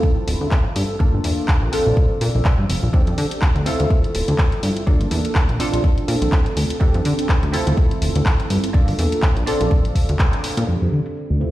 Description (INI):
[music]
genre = filtered disco house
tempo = 124 BPM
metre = 4/4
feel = swing 56% on 16ths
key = F major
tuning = A4 = 440 Hz
[part]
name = funky polysynth comp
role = accompaniment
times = 0.0-11.5 s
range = Bb3 to A4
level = -23 LUFS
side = right 1 dB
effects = chorus, phaser, sidechain pumping, low-pass filter
[part]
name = electronic kick drum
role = drums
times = 0.0-10.3 s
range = none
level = -16 LUFS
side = equal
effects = studio reverb
[part]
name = plucky analog bass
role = bass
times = 0.3-11.4 s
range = D1 to D3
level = -20 LUFS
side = equal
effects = sidechain pumping, low-pass filter
[part]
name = house drum kit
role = drums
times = 0.3-11.5 s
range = crash cymbal, handclaps, hi-hat, shaker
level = -27 LUFS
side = equal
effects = sidechain pumping on hats, low-pass filter on hats, studio reverb, low-pass filter on snare, sidechain pumping on cymbals, low-pass filter on cymbals, sidechain pumping on perc, low-pass filter on perc
[part]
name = warm symphonic violin section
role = sustained chords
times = 10.7-11.5 s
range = G4 to F6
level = -41 LUFS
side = left 1 dB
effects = none
[sound]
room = digital ambience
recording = played on a big sound system in a bare room, stone room reverb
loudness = -16 LUFS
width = side -15 dB against mid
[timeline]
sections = 0.0-10.7 A section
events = filter sweep 0.0-10.7; band accent 10.2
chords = 0.0 Dm7; 1.0 Gm9; 1.7 Bbmaj9; 2.9 F69; 3.7 Dm7; 4.9 Gm9; 5.6 Bbmaj9; 6.8 F69; 7.5 Dm7; 8.7 Gm9; 9.5 Bbmaj9; 10.7 F69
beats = 0.04 0.52 | 1.00 1.49 1.97 2.46 | 2.94 3.42 3.91 4.39 | 4.88 5.36 5.84 6.33 | 6.81 7.29 7.78 8.26 | 8.75 9.23 9.71 10.20 | 10.68 11.16